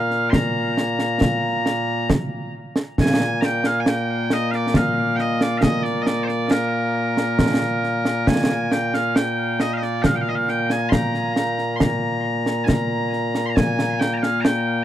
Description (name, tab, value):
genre	scottish traditional, Scottish pipe music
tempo	68 BPM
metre	3/4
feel	straight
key	Bb mixolydian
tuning	A4 = 440 Hz
part	loud bright bagpipes	melody	0.0-14.8 s	Bb2 to C6	-21 LUFS	equal	tape echo
part	concert snare drum and concert bass drum	drums	0.1-14.7 s	none	-21 LUFS	right 1 dB	none
room	little or no reverb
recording	dry, close 1970s-style studio recording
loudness	-18 LUFS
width	side -12 dB against mid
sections	0.0-3.0 A section; 3.0-13.6 B section; 13.6-14.8 B section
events	none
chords	none